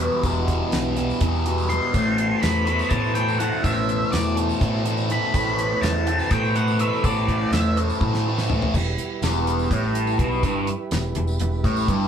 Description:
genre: psychedelic rock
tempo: 247 BPM (eighths)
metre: 7/8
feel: straight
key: E minor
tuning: A4 = 440 Hz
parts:
  - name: combo organ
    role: sustained chords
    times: 0.0-12.1 s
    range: G3 to C5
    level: -32 LUFS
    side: right 4 dB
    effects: none
  - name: fuzz guitar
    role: riff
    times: 0.0-12.1 s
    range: E2 to A3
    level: -23 LUFS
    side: left 1 dB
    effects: distortion, phaser
  - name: growling picked electric bass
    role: bass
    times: 0.0-12.1 s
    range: E1 to A2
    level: -26 LUFS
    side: equal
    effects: overdrive
  - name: bowed-like drone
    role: drone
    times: 0.0-8.8 s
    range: E2 to B2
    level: -35 LUFS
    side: right 2 dB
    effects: none
  - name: damped 70s drum kit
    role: drums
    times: 0.0-12.0 s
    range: crash cymbal, hi-hat, kick drum, snare drum, toms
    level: -26 LUFS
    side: equal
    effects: none
  - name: tambourine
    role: percussion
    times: 0.1-12.1 s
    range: none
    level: -41 LUFS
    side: left 2 dB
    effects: none
  - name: octave-fuzz lead guitar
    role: melody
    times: 1.7-7.8 s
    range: D5 to C6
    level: -26 LUFS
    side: equal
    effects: distortion
room: wet studio reverb, RT60 0.5 s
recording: band playing live in one room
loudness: -20 LUFS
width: side -8 dB against mid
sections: 0.0-8.7 A section; 8.7-12.1 B section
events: lead electric guitar solo 0.0-8.7; drum fill 8.0-8.7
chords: 0.0 Em; 1.9 Am; 8.7 Em

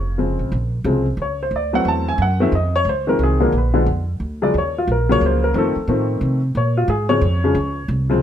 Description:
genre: jazz piano trio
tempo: 179 BPM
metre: 3/4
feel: swing 63% on 8ths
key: Bb minor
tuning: A4 = 444 Hz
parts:
  - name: warm upright piano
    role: melody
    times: 0.0-8.2 s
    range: Db3 to A5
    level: -18 LUFS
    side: left 2 dB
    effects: none
  - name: upright bass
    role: bass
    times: 0.0-8.2 s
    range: F1 to C3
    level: -20 LUFS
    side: right 1 dB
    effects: none
room: light reverb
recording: none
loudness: -16 LUFS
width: side -10 dB against mid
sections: 0.5-8.2 A section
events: upright piano solo 0.5-8.2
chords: 0.0 Bbm9 (rootless); 0.5 Bbmadd9; 1.5 D9; 2.5 Dbmaj7; 3.5 Bb7b9; 4.5 Ebm9; 5.5 F7; 6.5 Bbm9

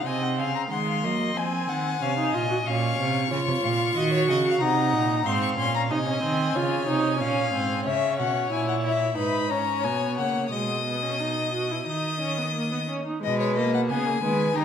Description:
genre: classical, baroque-style fugue for string quartet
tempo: 92 BPM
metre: 4/4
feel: straight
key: G# minor from 7.9 s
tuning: A4 = 440 Hz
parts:
  - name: warm violin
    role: melody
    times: 0.0-14.6 s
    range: C#5 to D#6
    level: -29 LUFS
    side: left 8 dB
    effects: none
  - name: warm violin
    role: second line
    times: 0.0-14.6 s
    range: G4 to Ab5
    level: -30 LUFS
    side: left 4 dB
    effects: none
  - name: warm viola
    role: accompaniment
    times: 0.0-14.6 s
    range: G#3 to F#4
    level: -27 LUFS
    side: right 2 dB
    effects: none
  - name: rich cello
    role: bass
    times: 0.0-14.6 s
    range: G#2 to Gb3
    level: -29 LUFS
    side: right 4 dB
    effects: none
room: wet recital hall reverb, RT60 1.5 s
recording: none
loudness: -22 LUFS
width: side -8 dB against mid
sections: 0.0-13.2 A section; 13.2-14.6 B section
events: none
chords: 0.1 Cdim; 1.4 Fm7; 2.7 A#m; 4.0 D#m7; 5.3 G#; 7.9 C#m; 10.5 G#m/B; 11.9 D#5; 13.2 G#m/B

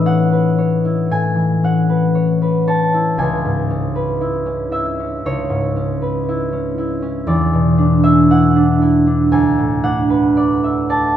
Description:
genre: classical, solo harp piece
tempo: 58 BPM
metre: 4/4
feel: rubato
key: A major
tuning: A4 = 438 Hz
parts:
  - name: concert harp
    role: solo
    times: 0.0-11.2 s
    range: C#2 to A5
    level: -14 LUFS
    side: equal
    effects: none
room: moderate concert hall reverb, RT60 1.8 s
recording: none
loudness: -14 LUFS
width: side -10 dB against mid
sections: 0.0-11.2 A section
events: none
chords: 0.0 A69; 3.2 C#m7; 7.3 E13; 9.3 D69

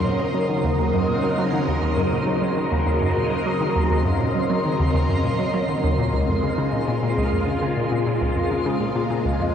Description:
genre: ambient, sequencer-driven space music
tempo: 101 BPM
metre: 4/4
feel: straight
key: Eb dorian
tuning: A4 = 440 Hz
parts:
  - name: phased string machine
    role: sustained chords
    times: 0.0-9.5 s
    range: Db3 to Eb5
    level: -22 LUFS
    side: equal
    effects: ensemble chorus, phaser, shimmer reverb
  - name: hollow square pluck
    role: riff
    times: 0.0-9.5 s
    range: Db2 to Gb3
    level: -23 LUFS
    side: equal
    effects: chorus, phaser, analog delay
  - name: twinkling granular texture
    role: texture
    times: 0.0-9.5 s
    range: C4 to C6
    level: -30 LUFS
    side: left 1 dB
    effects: built-in reverb, shimmer reverb
room: wet huge ambient reverb, RT60 7.7 s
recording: worn, warbling old tape, cassette tape, warbly pitch drift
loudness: -19 LUFS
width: side -8 dB against mid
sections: 0.0-9.5 A section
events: none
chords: 0.0 Ebm7; 6.0 Bbm7

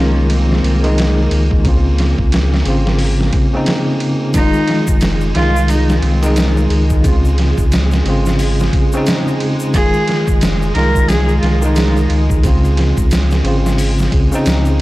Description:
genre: trip hop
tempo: 89 BPM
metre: 4/4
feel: swing 60% on 16ths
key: F minor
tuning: A4 = 440 Hz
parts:
  - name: dark cello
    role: melody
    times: 0.0-12.1 s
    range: C4 to Bb4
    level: -21 LUFS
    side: equal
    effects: dub echo
  - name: bell-like tine electric piano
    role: accompaniment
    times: 0.0-14.8 s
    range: Db3 to F4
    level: -17 LUFS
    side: equal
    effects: harmonic tremolo, vintage 12-bit sampler grit, tape echo
  - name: clear symphonic string section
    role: sustained chords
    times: 0.0-14.8 s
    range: Ab3 to Bb3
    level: -26 LUFS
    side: right 3 dB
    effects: none
  - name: warm sub bass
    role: bass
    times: 0.0-14.8 s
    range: F1 to Db2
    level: -15 LUFS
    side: equal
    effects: tube saturation
  - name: flickering grainy texture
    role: texture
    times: 0.2-14.8 s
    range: Ab3 to Ab4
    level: -32 LUFS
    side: equal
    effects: none
  - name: trip hop sampler-style drum kit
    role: drums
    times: 0.3-14.7 s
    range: hi-hat, kick drum, ride cymbal, snare drum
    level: -17 LUFS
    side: equal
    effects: none
  - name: tube shaker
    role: percussion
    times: 4.3-14.8 s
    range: none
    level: -34 LUFS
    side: left 3 dB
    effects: none
room: little or no reverb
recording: dry, gritty hardware recording, transformer saturation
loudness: -12 LUFS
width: side -18 dB against mid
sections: 0.0-14.8 A section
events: none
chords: 0.0 Fm7; 1.6 Dbmaj7; 4.3 Fm7; 7.0 Dbmaj7; 9.7 Fm7; 12.4 Dbmaj7

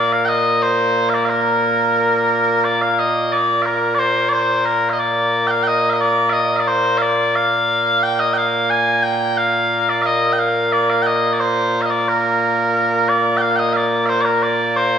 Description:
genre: scottish traditional, Scottish pipe music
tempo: 89 BPM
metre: 2/4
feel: straight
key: Bb major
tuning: A4 = 440 Hz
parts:
  - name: mellow small bagpipes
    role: solo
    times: 0.0-15.0 s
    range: Bb2 to Ab5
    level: -14 LUFS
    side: equal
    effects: none
room: wet recital hall reverb, RT60 1.4 s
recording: recorded in a church or concert hall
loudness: -14 LUFS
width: side -8 dB against mid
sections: 0.0-2.6 A section; 2.6-13.4 A section; 13.4-15.0 B section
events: none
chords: none

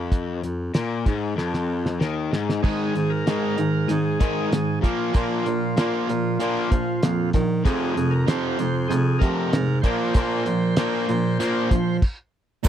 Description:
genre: classic rock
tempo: 96 BPM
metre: 4/4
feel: straight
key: unclear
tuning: A4 = 440 Hz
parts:
  - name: crunchy overdriven guitar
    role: riff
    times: 0.0-12.7 s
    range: F2 to Bb3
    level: -26 LUFS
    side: left 6 dB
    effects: none
  - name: clear baritone saxophone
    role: bass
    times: 0.0-12.7 s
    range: Eb2 to F3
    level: -27 LUFS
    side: equal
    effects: none
  - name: cloth-damped thuddy drum kit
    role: drums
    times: 0.1-12.7 s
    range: crash cymbal, hi-hat, kick drum, snare drum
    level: -21 LUFS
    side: equal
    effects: none
  - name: overdriven tonewheel organ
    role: melody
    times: 2.6-12.0 s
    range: F4 to C5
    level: -29 LUFS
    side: right 1 dB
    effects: slow rotary speaker, slapback echo
  - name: distorted electric guitar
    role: riff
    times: 2.6-12.7 s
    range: F2 to Bb3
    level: -26 LUFS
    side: right 11 dB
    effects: overdrive
  - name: string machine, cellos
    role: sustained chords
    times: 12.6-12.7 s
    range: none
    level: barely audible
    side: none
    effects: none
  - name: egg shaker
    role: percussion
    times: 12.6-12.7 s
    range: none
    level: -32 LUFS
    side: right 11 dB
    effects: none
room: little or no reverb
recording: dry, close 1970s-style studio recording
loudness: -20 LUFS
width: side -10 dB against mid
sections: 0.0-2.6 A section; 2.6-12.6 B section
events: drum fill 1.4-2.6; stop 12.0-12.6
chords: 0.0 Fm; 2.6 Ab5; 4.8 Bb5; 7.7 Fm; 9.8 Bbsus2

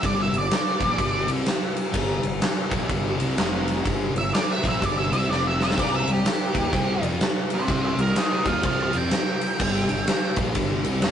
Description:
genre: blues rock power trio and southern rock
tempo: 125 BPM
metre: 4/4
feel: swing 62% on 8ths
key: unclear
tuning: A4 = 441 Hz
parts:
  - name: octave-fuzz lead guitar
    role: melody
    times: 0.0-1.3, 4.2-10.4 s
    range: G4 to A5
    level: -26 LUFS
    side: right 2 dB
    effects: distortion
  - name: biting overdriven guitar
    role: riff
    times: 0.0-11.1 s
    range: F2 to F4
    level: -28 LUFS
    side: equal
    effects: none
  - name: fuzz fingered electric bass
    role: bass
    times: 0.0-11.1 s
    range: F1 to F2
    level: -29 LUFS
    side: equal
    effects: overdrive
  - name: huge arena drum kit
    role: drums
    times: 0.0-11.1 s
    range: crash cymbal, kick drum, ride cymbal, snare drum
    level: -24 LUFS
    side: equal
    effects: none
room: moderate studio ambience, RT60 0.5 s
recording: rough rehearsal-room recording, warm saturation, nothing above 10.4 kHz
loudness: -21 LUFS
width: side -9 dB against mid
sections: 0.0-11.1 A section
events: lead electric guitar solo 0.0-11.1; drum fill 5.3-5.8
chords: 0.0 Gm; 3.4 F5; 3.9 Gm7; 5.3 F5; 5.8 Cm; 9.6 Gm7

